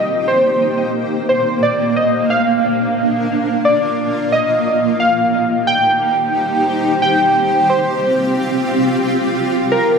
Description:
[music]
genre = IDM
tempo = 89 BPM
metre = 4/4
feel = swing 56% on 16ths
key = C minor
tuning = A4 = 440 Hz
[part]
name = warbly lo-fi synth keys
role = melody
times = 0.0-10.0 s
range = Bb4 to G5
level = -16 LUFS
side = equal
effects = chorus, vintage 12-bit sampler grit, ping-pong delay
[part]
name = granular cloud pad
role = sustained chords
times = 0.0-10.0 s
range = Bb3 to G5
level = -17 LUFS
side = equal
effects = built-in reverb
[sound]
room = wet lush hall reverb, RT60 2.3 s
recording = none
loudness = -13 LUFS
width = side -5 dB against mid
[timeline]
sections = 0.0-10.0 A section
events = none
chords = 0.0 Cm7; 1.6 Bb; 4.3 Cm7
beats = 0.29 0.97 | 1.64 2.32 2.99 3.66 | 4.34 5.01 5.69 6.36 | 7.04 7.71 8.38 9.06 | 9.73

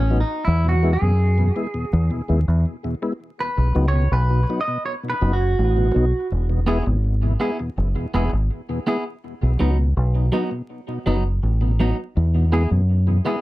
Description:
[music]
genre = reggae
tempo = 82 BPM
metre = 4/4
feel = straight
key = E major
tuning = A4 = 438 Hz
[part]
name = clean electric guitar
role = accompaniment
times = 0.0-13.4 s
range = F#3 to D#5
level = -25 LUFS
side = right 2 dB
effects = tape echo
[part]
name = tonewheel organ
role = accompaniment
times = 0.0-13.4 s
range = E2 to E4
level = -27 LUFS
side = left 2 dB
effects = chorus vibrato, slow rotary speaker, tape echo
[part]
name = deep dub fingered electric bass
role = bass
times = 0.0-13.2 s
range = E1 to F#2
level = -18 LUFS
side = equal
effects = none
[sound]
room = little or no reverb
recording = dry, close 1970s-style studio recording, vinyl crackle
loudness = -18 LUFS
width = side -17 dB against mid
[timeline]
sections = 0.0-6.3 A section; 6.3-13.4 B section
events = clean electric guitar solo 0.0-6.3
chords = 0.5 E; 3.4 B; 6.3 E; 9.2 B; 12.2 E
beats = | 0.46 1.19 1.92 2.65 | 3.38 4.12 4.84 5.58 | 6.31 7.04 7.77 8.50 | 9.23 9.96 10.69 11.42 | 12.15 12.88

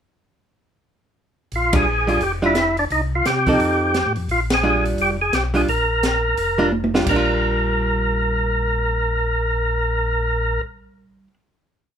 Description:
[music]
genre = soul jazz organ trio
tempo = 173 BPM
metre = 4/4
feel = swing 62% on 8ths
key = Bb major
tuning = A4 = 438 Hz
[part]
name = mellow tonewheel organ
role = bass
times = 1.5-10.6 s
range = F1 to C3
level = -24 LUFS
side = left 1 dB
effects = slow rotary speaker
[part]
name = compact cocktail drum kit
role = drums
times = 1.5-7.2 s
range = crash cymbal, hi-hat, kick drum, ride cymbal, snare drum, toms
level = -25 LUFS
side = equal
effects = none
[part]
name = percussive tonewheel organ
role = melody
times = 1.6-10.6 s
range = D4 to Bb4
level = -20 LUFS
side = equal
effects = overdrive, fast rotary speaker
[part]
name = archtop guitar, miked and amplified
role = accompaniment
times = 1.7-11.4 s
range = F3 to A4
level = -22 LUFS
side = right 2 dB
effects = none
[sound]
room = light reverb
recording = minimal, uncompressed stereo recording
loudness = -17 LUFS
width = side -8 dB against mid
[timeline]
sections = 1.5-7.1 A section; 7.1-9.8 final chord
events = band accent 1.7, 4.5; drum fill 6.7-7.1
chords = 1.5 Bb6; 2.9 Cm; 3.6 F7; 4.3 Bb6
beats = | 1.53 1.87 2.22 2.56 | 2.91 3.25 3.60 3.95 | 4.29 4.64 4.99 5.33 | 5.68 6.03 6.38 6.72 | 7.07 7.42 7.76 8.11 | 8.46 8.80 9.15 9.50

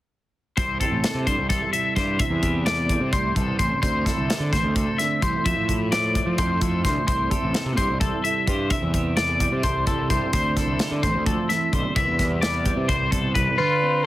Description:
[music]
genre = math rock and midwest emo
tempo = 258 BPM (eighths)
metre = 7/8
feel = straight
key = C major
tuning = A4 = 440 Hz
[part]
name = twelve-string electric guitar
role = accompaniment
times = 0.6-14.1 s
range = G2 to C5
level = -28 LUFS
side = right 4 dB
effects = analog chorus
[part]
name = twangy electric guitar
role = arpeggios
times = 0.6-14.0 s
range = F4 to E5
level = -24 LUFS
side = left 3 dB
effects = analog chorus, analog delay
[part]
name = fuzz picked electric bass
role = bass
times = 0.6-13.5 s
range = A1 to F3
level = -26 LUFS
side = equal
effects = overdrive
[part]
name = modern studio drum kit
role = drums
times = 0.6-13.5 s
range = hi-hat, kick drum, snare drum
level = -26 LUFS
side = equal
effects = none
[part]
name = breathy trumpet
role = melody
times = 13.6-14.1 s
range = B4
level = -21 LUFS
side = equal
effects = none
[sound]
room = light reverb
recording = heavily compressed radio sound, multiband compression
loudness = -20 LUFS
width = side -15 dB against mid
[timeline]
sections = 0.6-13.6 A section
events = none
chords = 0.6 C69; 3.8 Dsus2; 5.4 Fmaj7; 7.1 C69; 10.3 Dm9; 12.0 Cmaj9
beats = | 0.56 0.80 1.03 1.26 1.49 1.73 1.96 | 2.19 2.42 2.65 2.89 3.12 3.35 3.58 | 3.82 4.05 4.28 4.51 4.75 4.98 5.21 | 5.45 5.68 5.91 6.14 6.38 6.61 6.84 | 7.07 7.30 7.54 7.77 8.00 8.23 8.47 | 8.70 8.93 9.16 9.40 9.63 9.86 10.10 | 10.33 10.56 10.79 11.03 11.26 11.49 11.72 | 11.96 12.19 12.42 12.65 12.88 13.12 13.35 | 13.58 13.81 14.04

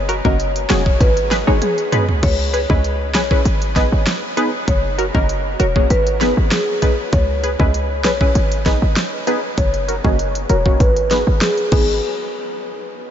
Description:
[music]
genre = dancehall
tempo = 98 BPM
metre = 4/4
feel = straight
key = G# minor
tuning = A4 = 440 Hz
[part]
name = short 808-style bass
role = bass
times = 0.0-12.0 s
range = E1 to C#2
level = -19 LUFS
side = equal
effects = none
[part]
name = punchy chord stab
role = accompaniment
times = 0.1-12.0 s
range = F#3 to C#5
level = -21 LUFS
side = equal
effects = chorus, low-pass filter
[part]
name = pop drum kit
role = drums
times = 0.1-11.9 s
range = crash cymbal, hi-hat, kick drum, snare drum, toms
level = -20 LUFS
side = equal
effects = none
[part]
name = marimba with medium mallets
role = melody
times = 0.2-12.0 s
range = G#4 to D#5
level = -22 LUFS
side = equal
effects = low-pass filter, ping-pong delay
[sound]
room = moderate huge ambient reverb, RT60 8.4 s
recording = dreamy mix soaked in reverb, nothing above 7.7 kHz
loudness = -14 LUFS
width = side -9 dB against mid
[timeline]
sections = 0.0-2.2 A section; 2.2-12.0 B section; 12.0-13.1 C section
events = drum fill 1.6-2.2; filter sweep 2.2-12.0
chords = 0.0 F#; 1.0 G#m; 2.2 C#m7; 3.5 G#m; 4.7 F#; 5.9 G#m; 7.1 C#m7; 8.4 G#m; 9.6 F#; 10.8 G#m; 12.0 N.C.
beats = 0.39 1.01 1.62 | 2.23 2.84 3.46 4.07 | 4.68 5.29 5.90 6.52 | 7.13 7.74 8.35 8.96 | 9.58 10.19 10.80 11.41

